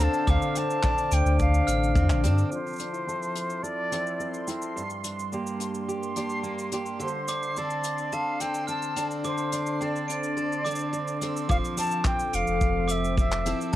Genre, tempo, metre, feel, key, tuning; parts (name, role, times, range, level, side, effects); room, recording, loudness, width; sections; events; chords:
folktronica; 107 BPM; 4/4; straight; A4 = 441 Hz
silver concert flute; melody; 0.0-13.6 s; C5 to A5; -30 LUFS; equal; cassette tape, analog delay
warbly tape-like pad; sustained chords; 0.0-13.8 s; D3 to F5; -33 LUFS; left 2 dB; chorus, built-in reverb, cassette tape
picked steel-string acoustic guitar; arpeggios; 0.0-13.8 s; G2 to A4; -32 LUFS; equal; low-pass filter, cassette tape, analog delay
warm sub bass; bass; 0.0-2.4, 11.5-13.8 s; F1 to G2; -24 LUFS; equal; tube saturation
soft brush drum kit; drums; 0.0-13.8 s; cabasa, handclaps, hi-hat; -36 LUFS; equal
glockenspiel with brass mallets; second line; 0.3-1.9, 7.3-13.8 s; A5 to D7; -35 LUFS; right 4 dB; cassette tape, analog delay
kick drum; drums; 0.3-2.1, 11.5-13.8 s; -26 LUFS; equal
backwards swelling texture; texture; 4.2-11.5 s; C6; -39 LUFS; right 3 dB; built-in reverb, cassette tape
light reverb; home recording on cassette; -24 LUFS; side -14 dB against mid
0.0-2.5 A section; 2.5-11.5 B section; 11.5-13.8 A section
band accent 2.1; filter sweep on steel-string acoustic guitar 2.5-11.5; filter sweep on ambient pad 2.5-11.5
0.0 Dm7; 2.5 Fmaj7; 4.8 Gm7; 7.0 Dm7; 11.5 Fmaj7